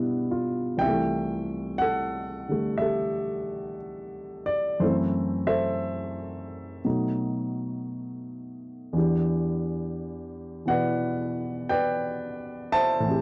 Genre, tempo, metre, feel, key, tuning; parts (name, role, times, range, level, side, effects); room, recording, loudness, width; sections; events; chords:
solo jazz; 59 BPM; 4/4; swing 66% on 8ths, rubato; A4 = 442 Hz
warm grand piano; solo; 0.0-13.2 s; C2 to A5; -25 LUFS; equal
light reverb; dry, close 1970s-style studio recording; -25 LUFS; side -24 dB against mid
0.0-13.2 A section
0.0 G7; 0.8 C6; 4.8 F#m7b5; 6.8 B7; 9.0 Em7